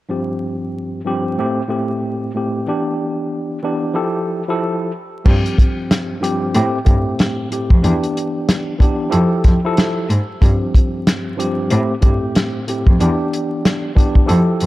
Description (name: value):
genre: hip hop, boom-bap hip-hop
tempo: 93 BPM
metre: 4/4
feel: swing 59% on 16ths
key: A minor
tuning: A4 = 440 Hz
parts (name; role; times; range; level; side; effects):
- tine electric piano; accompaniment; 0.1-14.7 s; G2 to A4; -19 LUFS; equal; medium stereo tremolo, high-pass filter, low-pass filter
- dark cello; bass; 5.3-14.7 s; E2 to A2; -17 LUFS; equal; none
- warm soul drum kit; drums; 5.3-14.7 s; crash cymbal, hi-hat, kick drum, snare drum; -14 LUFS; equal; none
room: light reverb, small room ambience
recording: dark, warm production, vinyl crackle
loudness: -15 LUFS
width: side -17 dB against mid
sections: 0.1-5.3 A section; 5.3-14.7 B section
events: kick muted 14.3-14.7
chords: 0.1 G7sus4; 1.4 Am7; 2.7 Em7; 4.0 Fmaj9; 5.3 G7sus4; 6.5 Am7; 7.8 Em7; 9.1 Fmaj9; 10.4 G7sus4; 11.7 Am7; 13.0 Em7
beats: | 0.10 0.74 1.39 2.03 | 2.67 3.32 3.97 4.61 | 5.26 5.90 6.55 7.19 | 7.84 8.48 9.13 9.77 | 10.42 11.06 11.71 12.35 | 13.00 13.64 14.29